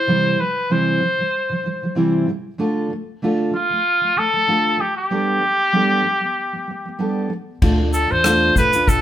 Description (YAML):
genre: acoustic pop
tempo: 95 BPM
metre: 4/4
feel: swing 55% on 16ths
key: unclear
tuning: A4 = 441 Hz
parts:
  - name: clear trumpet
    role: melody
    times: 0.0-9.0 s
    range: F4 to C5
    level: -18 LUFS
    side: equal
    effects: none
  - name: fingerpicked steel-string acoustic guitar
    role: accompaniment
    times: 0.0-9.0 s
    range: C3 to C5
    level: -21 LUFS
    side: right 1 dB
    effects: none
  - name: upright bass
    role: bass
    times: 7.6-9.0 s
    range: D2 to E2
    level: -22 LUFS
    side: left 1 dB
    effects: none
  - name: unplugged drum kit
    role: drums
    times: 7.6-9.0 s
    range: crash cymbal, kick drum, rim click, shaker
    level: -19 LUFS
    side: left 1 dB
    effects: none
room: moderate large studio reverb, RT60 1.0 s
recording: band playing live in one room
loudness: -16 LUFS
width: side -11 dB against mid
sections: 0.0-7.6 A section; 7.6-9.0 B section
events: none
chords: 0.0 C; 2.6 Dm; 5.1 Gadd9; 7.6 Dm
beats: | 0.07 0.70 1.33 1.96 | 2.59 3.22 3.85 4.48 | 5.11 5.74 6.37 7.00 | 7.62 8.25 8.88